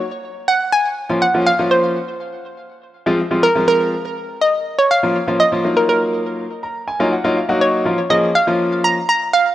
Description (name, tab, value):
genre	dance-pop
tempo	122 BPM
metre	4/4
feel	straight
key	Bb minor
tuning	A4 = 439 Hz
part	hollow square pluck	melody	0.0-9.5 s	Bb4 to Bb5	-16 LUFS	right 1 dB	chorus, tape echo
part	clear concert grand piano	accompaniment	1.1-9.0 s	F3 to Bb5	-18 LUFS	left 1 dB	none
room	moderate lush hall reverb, RT60 2.2 s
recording	worn, warbling old tape, cassette tape, warbly pitch drift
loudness	-14 LUFS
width	side -13 dB against mid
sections	0.0-7.9 A section; 7.9-9.5 B section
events	grand piano fill 6.4-7.9; build-up 7.9-9.5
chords	0.0 Bbm; 2.0 Fm; 3.9 Bbm; 5.6 Ebmadd9; 7.9 Bbm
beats	0.48 0.97 1.47 | 1.96 2.45 2.94 3.43 | 3.92 4.42 4.91 5.40 | 5.89 6.38 6.88 7.37 | 7.86 8.35 8.84 9.34